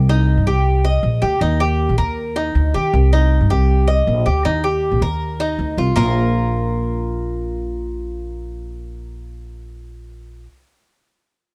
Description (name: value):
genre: latin, Cuban son and guajira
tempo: 158 BPM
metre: 4/4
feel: straight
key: Bb major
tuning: A4 = 440 Hz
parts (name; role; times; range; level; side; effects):
- upright bass; bass; 0.0-10.5 s; Bb1 to Eb3; -20 LUFS; equal; none
- Cuban tres; arpeggios; 0.1-10.5 s; Bb3 to Eb5; -23 LUFS; equal; none
room: little or no reverb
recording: dry, close 1970s-style studio recording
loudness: -18 LUFS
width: mono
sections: 0.0-6.0 A section; 6.0-9.0 B section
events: none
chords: 0.0 Cm7; 1.4 Eb; 2.9 Cm; 4.4 Eb; 6.0 Bb5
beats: 0.28 0.66 1.04 | 1.42 1.79 2.17 2.55 | 2.93 3.31 3.69 4.07 | 4.45 4.83 5.21 5.58 | 5.96 6.34 6.72 7.10 | 7.48 7.86 8.23 8.61